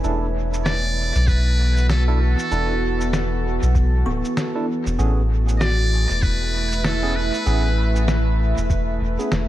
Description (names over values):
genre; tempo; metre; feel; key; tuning
ambient dub; 97 BPM; 4/4; swing 60% on 16ths; unclear; A4 = 440 Hz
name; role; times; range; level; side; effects
warbly tape-like pad; sustained chords; 0.0-9.5 s; E3 to E5; -26 LUFS; right 1 dB; chorus, built-in reverb
barky tine electric piano; stabs; 0.0-9.3 s; B3 to A4; -30 LUFS; right 3 dB; phaser, dub echo
soft dub sub bass; bass; 0.0-9.5 s; D1 to B1; -20 LUFS; equal; tube saturation
electronic shaker and snare drum; drums; 0.0-9.5 s; none; -28 LUFS; equal; studio reverb, dub echo
trumpet with metal mute; melody; 0.7-8.1 s; A4 to D5; -27 LUFS; equal; vintage 12-bit sampler grit, dub echo
electronic kick drum; drums; 1.3-8.8 s; none; -21 LUFS; equal; studio reverb
kalimba; arpeggios; 4.1-7.6 s; B3 to C#6; -32 LUFS; equal; dub echo
room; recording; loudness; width
light reverb, digital ambience; none; -18 LUFS; side -14 dB against mid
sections
0.0-9.5 A section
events
none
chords
0.0 E7sus4; 5.0 Amaj9